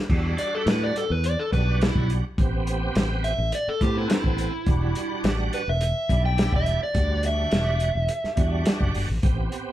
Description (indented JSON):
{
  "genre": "straight-eighth soul blues",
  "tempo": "105 BPM",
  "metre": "4/4",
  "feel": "straight",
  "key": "E minor",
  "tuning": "A4 = 440 Hz",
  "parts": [
    { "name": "bright tonewheel organ", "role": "accompaniment", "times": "0.0-9.7 s", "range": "G3 to A4", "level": "-32 LUFS", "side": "right 5 dB", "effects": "chorus vibrato, slow rotary speaker" },
    { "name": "fretless electric bass", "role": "bass", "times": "0.1-9.5 s", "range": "E1 to A2", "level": "-25 LUFS", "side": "equal", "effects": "none" },
    { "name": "warm soul drum kit", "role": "drums", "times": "0.1-9.7 s", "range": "crash cymbal, hi-hat, kick drum, snare drum", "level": "-25 LUFS", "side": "equal", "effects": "none" },
    { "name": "overdriven slide guitar", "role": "melody", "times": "0.4-8.9 s", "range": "E4 to G5", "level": "-27 LUFS", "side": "equal", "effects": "none" }
  ],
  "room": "light reverb",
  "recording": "band playing live in one room",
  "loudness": "-21 LUFS",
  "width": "side -13 dB against mid",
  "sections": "0.1-9.7 A section",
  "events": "electric slide guitar solo 0.1-9.7",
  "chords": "0.1 Em7; 2.4 Am7; 4.7 Em7"
}